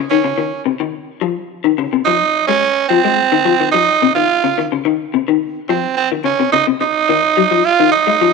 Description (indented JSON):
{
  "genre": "afrobeat",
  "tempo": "107 BPM",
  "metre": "4/4",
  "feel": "straight",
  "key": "unclear",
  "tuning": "A4 = 439 Hz",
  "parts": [
    { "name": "electric guitar through a small old amp", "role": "arpeggios", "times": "0.0-8.3 s", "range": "C3 to Ab3", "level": "-16 LUFS", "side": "left 12 dB", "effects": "ensemble chorus" },
    { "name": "raspy tenor saxophone", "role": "melody", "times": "0.1-8.3 s", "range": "C4 to F4", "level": "-13 LUFS", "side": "right 8 dB", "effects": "none" }
  ],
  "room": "moderate echo chamber reverb, RT60 1.8 s, small room ambience",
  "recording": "1960s-style stereo with parts hard left and right",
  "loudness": "-13 LUFS",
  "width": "side -4 dB against mid",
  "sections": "0.0-6.5 A section; 6.5-8.3 B section",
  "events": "none",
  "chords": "0.0 Dbsus2; 0.9 F5; 2.1 Fm7; 4.3 Cmadd11 (rootless); 5.4 F5; 6.5 Cdim; 7.7 Fm7"
}